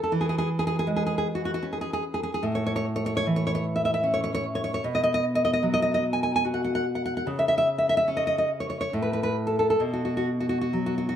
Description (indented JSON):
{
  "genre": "romantic piece for solo classical guitar",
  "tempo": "65-78 BPM",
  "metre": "3/4",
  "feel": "rubato",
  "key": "unclear",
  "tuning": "A4 = 440 Hz",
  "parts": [
    { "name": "nylon-string guitar", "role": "solo", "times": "0.0-11.2 s", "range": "A2 to G#5", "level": "-23 LUFS", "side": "equal", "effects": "slapback echo" }
  ],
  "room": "moderate spring reverb, RT60 1.6 s",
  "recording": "none",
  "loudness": "-23 LUFS",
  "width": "side -9 dB against mid",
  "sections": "0.0-11.2 A section",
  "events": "none",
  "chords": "0.1 C#m/E; 2.4 A; 4.8 B5; 7.3 N.C.; 9.8 B5",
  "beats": "| 0.10 0.87 1.65 | 2.44 3.25 4.05 | 4.85 5.64 6.44 | 7.26 8.09 8.94 | 9.83 10.75"
}